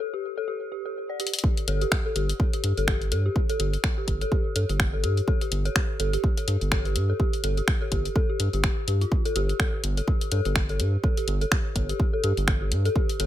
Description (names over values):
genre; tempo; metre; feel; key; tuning
minimal techno; 125 BPM; 4/4; swing 57% on 16ths; unclear; A4 = 441 Hz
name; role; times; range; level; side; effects
dark detuned synth bell; riff; 0.0-13.2 s; F4 to D5; -30 LUFS; left 2 dB; chorus, phaser, vintage 12-bit sampler grit, sidechain pumping, tape echo
house drum kit; drums; 1.2-13.3 s; finger snaps, hi-hat; -28 LUFS; left 1 dB; none
electronic kick drum; drums; 1.4-13.1 s; none; -25 LUFS; equal; none
round analog bass; bass; 1.7-13.3 s; G1 to G2; -25 LUFS; equal; sidechain pumping
room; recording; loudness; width
digital ambience; none; -23 LUFS; side -12 dB against mid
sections
0.0-1.4 A section; 1.4-13.3 B section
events
break 0.0-1.4; drum fill 1.2; drop 1.4-13.3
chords
0.0 G5